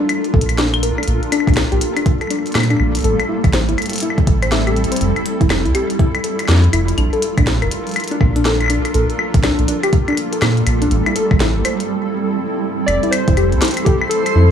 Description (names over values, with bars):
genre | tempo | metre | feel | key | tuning
IDM | 122 BPM | 4/4 | swing 62% on 16ths | F major | A4 = 440 Hz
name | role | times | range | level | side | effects
granular cloud pad | sustained chords | 0.0-14.5 s | G3 to Bb4 | -21 LUFS | right 2 dB | built-in reverb, vintage 12-bit sampler grit
soft round pluck | arpeggios | 0.0-14.5 s | D4 to E5 | -21 LUFS | left 3 dB | chorus, digital delay
glitchy drum kit | drums | 0.1-14.3 s | claves, hi-hat, snare drum | -21 LUFS | left 2 dB | tape echo
round analog bass | bass | 0.3-14.5 s | F1 to Bb2 | -16 LUFS | equal | none
electronic kick drum | drums | 0.3-14.0 s | none | -14 LUFS | equal | none
warbly lo-fi synth keys | melody | 12.9-14.5 s | G4 to D5 | -19 LUFS | equal | chorus, vintage 12-bit sampler grit, tape echo
backwards swelling texture | texture | 13.6-14.5 s | C5 | -23 LUFS | right 6 dB | built-in reverb, sidechain pumping
room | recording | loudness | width
light reverb, digital ambience | small room ambience | -14 LUFS | side -8 dB against mid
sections
0.0-12.9 A section; 12.9-14.5 B section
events
break 11.9-12.9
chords
0.0 Bbmaj7; 1.1 Gm9/Bb; 3.0 Am7; 5.0 Fmaj9; 7.0 Bbmaj7; 8.9 Gm9/Bb; 10.9 Am7; 12.9 Fmaj9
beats
0.09 0.58 | 1.08 1.57 2.06 2.55 | 3.04 3.54 4.03 4.52 | 5.01 5.50 5.99 6.49 | 6.98 7.47 7.96 8.45 | 8.95 9.44 9.93 10.42 | 10.91 11.40 11.89 12.39 | 12.88 13.37 13.86 14.35